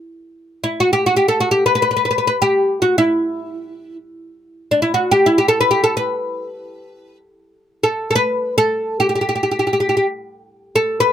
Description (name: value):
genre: Turkish makam ensemble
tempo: free time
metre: none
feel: none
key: unclear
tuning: A4 = 441 Hz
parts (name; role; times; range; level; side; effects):
- oud; solo; 0.6-11.1 s; D4 to B4; -15 LUFS; equal; none
room: light reverb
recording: none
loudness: -15 LUFS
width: side -10 dB against mid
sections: 0.0-11.1 A section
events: none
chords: none